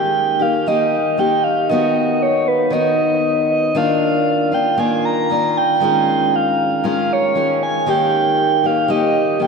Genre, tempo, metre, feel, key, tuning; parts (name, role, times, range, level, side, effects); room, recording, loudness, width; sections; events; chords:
acoustic folk duo or small band; 117 BPM; 4/4; straight; Eb major; A4 = 440 Hz
reedy FM lead; melody; 0.0-9.5 s; B4 to Bb5; -16 LUFS; right 2 dB; chorus
picked steel-string acoustic guitar; accompaniment; 0.0-9.5 s; Eb3 to G4; -18 LUFS; left 2 dB
wet cathedral reverb, RT60 6.3 s; in a vast, echoing space; -14 LUFS; side -4 dB against mid
0.0-9.5 A section
0.0 Eb; 1.7 B/D#; 3.8 Bb/Eb; 5.8 Db/Eb; 7.9 Eb